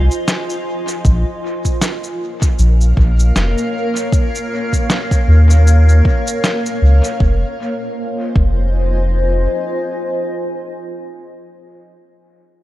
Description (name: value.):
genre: ambient dub.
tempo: 78 BPM.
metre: 4/4.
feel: swing 57% on 16ths.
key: F minor.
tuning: A4 = 440 Hz.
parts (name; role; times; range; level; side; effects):
granular cloud pad; sustained chords; 0.0-11.0 s; Bb3 to Ab5; -21 LUFS; equal; built-in reverb.
soft dub sub bass; bass; 0.0-9.5 s; F1 to Eb2; -10 LUFS; equal; none.
electronic shaker and snare drum; drums; 0.1-7.2 s; none; -22 LUFS; equal; dub echo.
electronic kick drum; drums; 1.0-8.6 s; none; -15 LUFS; equal; none.
room: little or no reverb.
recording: none.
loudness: -13 LUFS.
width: side -15 dB against mid.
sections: 0.0-7.2 A section; 7.2-10.3 B section.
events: none.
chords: 0.0 Fm7; 1.0 Bbm; 7.2 Fm7.